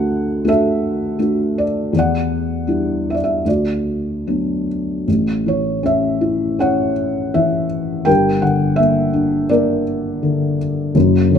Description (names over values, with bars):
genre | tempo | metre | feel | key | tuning
classical, lyrical solo piano | 71-86 BPM | 4/4 | rubato | unclear | A4 = 440 Hz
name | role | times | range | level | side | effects
felt-muted upright piano | solo | 0.0-11.4 s | F#1 to G5 | -15 LUFS | left 1 dB | none
room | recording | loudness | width
light reverb | close, detailed microphones | -15 LUFS | side -8 dB against mid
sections
0.0-5.1 A section; 5.1-11.4 B section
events
none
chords
0.0 D; 1.9 Em7; 3.5 D6; 5.1 A; 8.1 Gm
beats
0.46 1.19 | 1.93 2.68 3.45 4.27 | 5.08 5.84 6.59 7.33 | 8.06 8.77 9.49 10.23 | 10.95